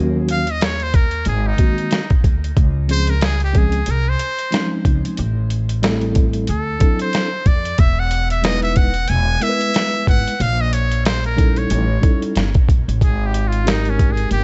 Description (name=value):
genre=hip hop, jazz-hop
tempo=92 BPM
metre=4/4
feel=swing 58% on 16ths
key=unclear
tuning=A4 = 440 Hz
part: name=tine electric piano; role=accompaniment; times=0.0-14.4 s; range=Eb3 to B4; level=-25 LUFS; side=equal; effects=none
part: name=upright bass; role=bass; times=0.0-14.4 s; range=E1 to F2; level=-22 LUFS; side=equal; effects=none
part: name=trumpet with metal mute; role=melody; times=0.3-14.4 s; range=Db4 to G#5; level=-25 LUFS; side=equal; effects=tape echo
part: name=boom bap sampler-style drum kit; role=drums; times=0.3-14.4 s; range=hi-hat, kick drum, snare drum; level=-19 LUFS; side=equal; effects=none
room=small room ambience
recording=nothing above 7.9 kHz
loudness=-18 LUFS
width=mono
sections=0.0-13.0 A section; 13.0-14.4 A section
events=muted trumpet solo 0.0-13.0, 13.0-14.4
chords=0.0 Ebm7; 1.3 Ab9; 2.6 Dbmaj7; 5.2 Am7; 6.5 D9; 7.8 Emaj7; 10.4 Bbm; 11.7 A7#11; 13.0 Abmaj9